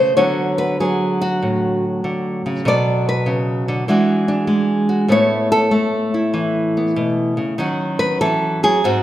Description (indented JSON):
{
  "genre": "solo jazz",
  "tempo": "97 BPM",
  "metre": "4/4",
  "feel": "swing 67% on 8ths, rubato",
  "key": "unclear",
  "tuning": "A4 = 440 Hz",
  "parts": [
    { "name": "nylon-string guitar", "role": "solo", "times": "0.0-9.0 s", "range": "G#2 to D5", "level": "-15 LUFS", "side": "equal", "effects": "none" }
  ],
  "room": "wet recital hall reverb, RT60 1.7 s",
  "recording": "recorded in a church or concert hall",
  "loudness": "-16 LUFS",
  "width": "side -13 dB against mid",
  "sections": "0.0-9.0 A section",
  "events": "nylon-string guitar solo 0.0-9.0",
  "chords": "0.2 D6; 2.7 Bm7; 3.9 E9; 5.1 Aadd9; 7.6 D#m7b5"
}